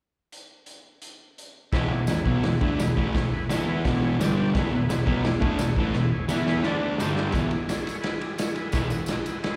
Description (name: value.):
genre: garage rock duo or trio.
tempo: 171 BPM.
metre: 4/4.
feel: straight.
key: E mixolydian.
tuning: A4 = 439 Hz.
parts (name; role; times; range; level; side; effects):
raw garage drum kit; drums; 0.3-9.5 s; hi-hat, kick drum, ride cymbal, snare drum; -30 LUFS; equal; none.
combo organ; sustained chords; 1.7-9.6 s; D4 to B5; -37 LUFS; equal; none.
fuzz guitar; riff; 1.7-8.9 s; E2 to E4; -27 LUFS; equal; distortion, slapback echo.
tambourine; percussion; 2.1-9.3 s; none; -45 LUFS; equal; none.
room: small room ambience.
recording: live gig heard through the venue's PA, recital hall reverb.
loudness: -25 LUFS.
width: mono.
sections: 0.3-1.7 A section; 1.7-7.4 B section; 7.4-9.6 C section.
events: drum fill 6.0-7.4; transistor combo organ fill 6.3-7.4.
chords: 0.3 N.C.; 1.7 E; 4.2 G5; 4.6 E; 6.7 D5; 7.0 G5; 7.4 E.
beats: | 0.33 0.68 1.03 1.39 | 1.74 2.09 2.44 2.79 | 3.15 3.50 3.85 4.20 | 4.55 4.90 5.25 5.61 | 5.96 6.30 6.65 7.00 | 7.35 7.70 8.05 8.40 | 8.74 9.09 9.44.